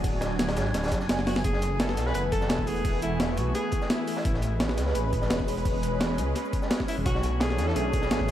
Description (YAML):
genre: liquid drum and bass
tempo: 171 BPM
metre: 4/4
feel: straight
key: F# minor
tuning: A4 = 440 Hz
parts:
  - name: lush unison pad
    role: sustained chords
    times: 0.0-8.3 s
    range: E3 to G#5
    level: -31 LUFS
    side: equal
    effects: chorus, phaser, sidechain pumping
  - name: dark detuned saw bass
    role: bass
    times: 0.0-8.3 s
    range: D1 to E2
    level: -29 LUFS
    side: equal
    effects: none
  - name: breakbeat sampler-style drum kit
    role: drums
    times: 0.0-8.3 s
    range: cabasa, hi-hat, snare drum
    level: -31 LUFS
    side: equal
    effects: none
  - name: crunchy breakbeat drum kit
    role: drums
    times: 0.0-8.2 s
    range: hi-hat, snare drum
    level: -36 LUFS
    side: equal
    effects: high-pass filter on hats, high-pass filter on snare, high-pass filter on room
  - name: electronic kick drum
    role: drums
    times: 0.0-8.3 s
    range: none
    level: -30 LUFS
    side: equal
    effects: overdrive
  - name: warm tenor saxophone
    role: melody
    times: 1.3-4.6, 6.9-8.3 s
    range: E4 to B4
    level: -33 LUFS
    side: equal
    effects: diffuse ambient delay
room: light reverb, studio reverb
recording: none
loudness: -24 LUFS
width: side -11 dB against mid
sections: 0.0-8.3 A section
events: drum fill 1.3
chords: 0.0 E9 (rootless); 1.4 F#m11; 4.3 Amaj9; 7.1 Bm11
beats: | 0.04 0.39 0.74 1.09 | 1.44 1.79 2.15 2.50 | 2.85 3.20 3.55 3.90 | 4.25 4.60 4.95 5.30 | 5.66 6.01 6.36 6.71 | 7.06 7.41 7.76 8.11